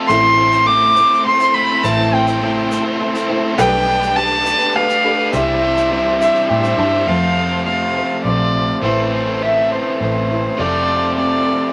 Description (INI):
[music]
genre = folk rock and heartland rock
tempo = 103 BPM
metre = 3/4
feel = straight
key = unclear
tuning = A4 = 443 Hz
[part]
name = clear upright piano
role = accompaniment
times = 0.0-7.1 s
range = E4 to A5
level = -29 LUFS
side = equal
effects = none
[part]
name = picked plugged-in steel-string acoustic guitar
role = accompaniment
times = 0.0-11.7 s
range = A2 to C5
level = -25 LUFS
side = equal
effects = none
[part]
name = overdriven electric guitar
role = riff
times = 0.0-11.7 s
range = F2 to C5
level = -23 LUFS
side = equal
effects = none
[part]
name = dark fiddle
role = melody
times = 0.1-11.7 s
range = C5 to D6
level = -18 LUFS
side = equal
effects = none
[part]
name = tonewheel organ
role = sustained chords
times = 0.1-11.7 s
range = C4 to C5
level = -31 LUFS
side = equal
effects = none
[part]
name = vintage muted fingered electric bass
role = bass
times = 0.1-11.5 s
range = F1 to A2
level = -25 LUFS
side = equal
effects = none
[part]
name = tube shaker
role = percussion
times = 0.1-6.8 s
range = none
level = -40 LUFS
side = equal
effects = none
[sound]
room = moderate small room reverb, RT60 0.5 s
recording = none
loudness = -16 LUFS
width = mono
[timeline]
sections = 0.0-7.1 A section; 7.1-11.7 B section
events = upright piano fill 5.9-7.1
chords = 0.1 Am; 3.6 Gadd9/B; 5.3 Cadd9; 7.1 F; 8.8 Amadd9; 10.6 F